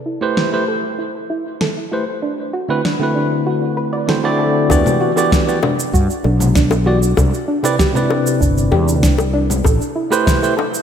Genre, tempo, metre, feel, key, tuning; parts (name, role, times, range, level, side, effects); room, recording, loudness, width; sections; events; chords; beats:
sunset chillout; 97 BPM; 4/4; straight; E minor; A4 = 439 Hz
soft round pluck; arpeggios; 0.1-10.7 s; D4 to D5; -22 LUFS; right 1 dB; lush chorus, diffuse ambient delay
barky tine electric piano; accompaniment; 0.2-10.5 s; C3 to D5; -18 LUFS; moving between left 3 dB and right 4 dB; auto-pan, diffuse ambient delay
electronic snare drum, cabasa and congas; drums; 0.4-10.8 s; -22 LUFS; left 1 dB; low-pass filter on snare, low-pass filter on perc, low-pass filter on room
fretless electric bass; bass; 4.7-9.8 s; G1 to G2; -16 LUFS; equal; wide subtle chorus
electronic kick drum; drums; 4.7-10.4 s; -17 LUFS; equal
bongos; percussion; 4.7-10.7 s; -25 LUFS; left 5 dB
moderate lush hall reverb, RT60 2.5 s; dreamy mix soaked in reverb; -14 LUFS; side -8 dB against mid
0.0-4.7 A section; 4.7-10.8 B section
filter sweep on tine electric piano 0.0-4.7
0.0 Am9; 2.2 D13; 4.7 Em9; 7.2 Cmaj9; 9.7 Am9
0.37 0.99 1.61 | 2.23 2.85 3.47 4.08 | 4.70 5.32 5.94 6.56 | 7.18 7.79 8.41 9.03 | 9.65 10.27